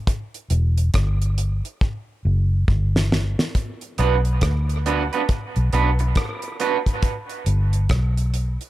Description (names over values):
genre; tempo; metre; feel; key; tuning
dub reggae; 69 BPM; 4/4; swing 62% on 16ths; B minor; A4 = 440 Hz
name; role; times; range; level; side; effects
damped 70s drum kit; drums; 0.1-8.7 s; hi-hat, kick drum, rim click, snare drum; -23 LUFS; equal; none
vintage muted fingered electric bass; bass; 0.5-8.6 s; E1 to D2; -19 LUFS; equal; none
electric guitar at the edge of break-up; accompaniment; 4.0-6.8 s; B3 to B4; -24 LUFS; right 7 dB; lush chorus, dub echo
room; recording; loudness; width
small room ambience; echo-heavy mix; -19 LUFS; side -15 dB against mid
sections
0.0-3.5 A section; 3.5-8.7 B section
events
break 0.0-3.5; drum fill 1.8-3.5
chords
0.1 Em; 3.5 Bm; 7.0 G